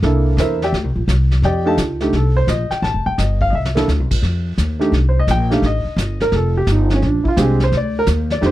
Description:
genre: jazz piano trio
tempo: 172 BPM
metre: 4/4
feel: swing 65% on 8ths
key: F mixolydian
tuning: A4 = 436 Hz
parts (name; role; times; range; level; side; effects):
- warm grand piano; melody; 0.0-8.5 s; Ab3 to A5; -18 LUFS; right 1 dB; none
- upright bass; bass; 0.0-8.5 s; Eb1 to F2; -17 LUFS; equal; none
- vintage brush drum kit; drums; 0.0-8.5 s; brushed snare drum, crash cymbal, hi-hat, kick drum, snare drum; -24 LUFS; equal; none
room: small room reverb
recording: dry, close 1970s-style studio recording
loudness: -14 LUFS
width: side -14 dB against mid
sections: 0.0-4.2 A section; 4.2-8.5 B section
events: drum fill 3.5-3.9; grand piano solo 4.2-8.5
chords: 0.0 C13; 1.4 F13; 3.5 C9; 4.2 F9; 7.0 Bb9

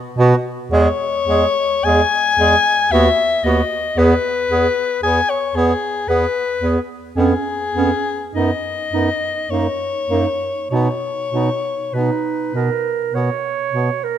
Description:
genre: classical, lyrical piece for single-reed quartet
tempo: 48-58 BPM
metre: 3/4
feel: rubato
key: B major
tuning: A4 = 441 Hz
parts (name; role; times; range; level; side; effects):
- warm clarinet; second line; 0.2-14.2 s; C#4 to C#5; -24 LUFS; right 8 dB; none
- clear tenor saxophone; accompaniment; 0.2-13.9 s; G#3 to B3; -23 LUFS; equal; none
- warm bass clarinet; bass; 0.2-13.9 s; D#2 to B2; -20 LUFS; right 2 dB; none
- clear soprano saxophone; melody; 0.7-13.1 s; G#4 to G#5; -18 LUFS; left 5 dB; none
room: light reverb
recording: close, detailed microphones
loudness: -15 LUFS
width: side -10 dB against mid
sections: 0.0-14.2 A section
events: none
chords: 0.0 B5; 0.7 C#m/E; 2.9 B/D#; 4.0 E; 7.2 C#7/E#; 8.3 B/F#; 9.5 F#6; 10.7 B

